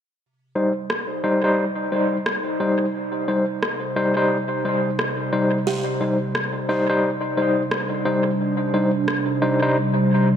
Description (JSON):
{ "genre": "ambient dub", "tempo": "88 BPM", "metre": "4/4", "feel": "swing 59% on 16ths", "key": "C minor", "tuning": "A4 = 440 Hz", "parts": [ { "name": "warbly tape-like pad", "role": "sustained chords", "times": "0.9-10.4 s", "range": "C3 to Eb4", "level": "-25 LUFS", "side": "right 1 dB", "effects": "chorus, built-in reverb, vintage 12-bit sampler grit" }, { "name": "overdriven tine electric piano", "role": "stabs", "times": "0.6-9.8 s", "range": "G3 to C5", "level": "-21 LUFS", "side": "left 1 dB", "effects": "fast tremolo, low-pass filter, dub echo" }, { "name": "electronic rim click", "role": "drums", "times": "0.9-9.2 s", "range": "none", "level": "-28 LUFS", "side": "equal", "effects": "overdrive, dub echo" }, { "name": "buzzing kalimba", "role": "arpeggios", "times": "5.7-9.1 s", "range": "G4", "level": "-30 LUFS", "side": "right 4 dB", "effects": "dub echo" } ], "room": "moderate echo chamber reverb, RT60 1.5 s", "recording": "none", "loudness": "-19 LUFS", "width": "side -9 dB against mid", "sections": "0.2-10.4 A section", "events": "none", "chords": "0.2 Cm", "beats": "| 0.22 0.90 1.58 2.26 | 2.94 3.63 4.31 4.99 | 5.67 6.35 7.04 7.72 | 8.40 9.08 9.76" }